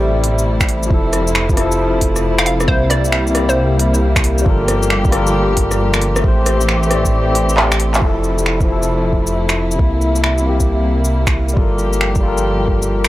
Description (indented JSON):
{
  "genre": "future garage",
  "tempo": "135 BPM",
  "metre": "4/4",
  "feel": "swing 65% on 16ths",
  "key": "unclear",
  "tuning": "A4 = 438 Hz",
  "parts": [
    { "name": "barky tine electric piano", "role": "accompaniment", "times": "0.0-13.1 s", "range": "C3 to D5", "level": "-19 LUFS", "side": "left 2 dB", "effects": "medium stereo tremolo, sidechain pumping, low-pass filter, analog delay" },
    { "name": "dark chamber string section", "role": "sustained chords", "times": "0.0-13.1 s", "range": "C3 to G4", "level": "-22 LUFS", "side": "equal", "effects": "sidechain pumping" },
    { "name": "dark detuned saw bass", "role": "bass", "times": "0.0-13.1 s", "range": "F1 to C2", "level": "-18 LUFS", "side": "equal", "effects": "sidechain pumping" },
    { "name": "organic electronic drum kit", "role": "drums", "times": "0.2-13.1 s", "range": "finger snaps, handclaps, hi-hat, rim click, shaker", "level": "-19 LUFS", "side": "equal", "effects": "overdrive" },
    { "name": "electronic kick drum", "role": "drums", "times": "0.6-12.8 s", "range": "none", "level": "-17 LUFS", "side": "equal", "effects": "overdrive" },
    { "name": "hollow square pluck", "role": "melody", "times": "2.4-3.9 s", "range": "C5 to F5", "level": "-22 LUFS", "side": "right 1 dB", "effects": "chorus, tape echo" }
  ],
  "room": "light reverb",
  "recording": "none",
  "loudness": "-13 LUFS",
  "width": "side -16 dB against mid",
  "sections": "0.0-8.0 A section; 8.0-13.1 B section",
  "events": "kick drops out 7.1-8.0; drum fill 7.6-8.0; band accent 7.9",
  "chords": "0.0 Am7; 0.9 Fmaj7; 2.7 C7; 4.5 Gm9; 6.2 Am7; 8.0 Fmaj7; 9.8 C7; 11.6 Gm9"
}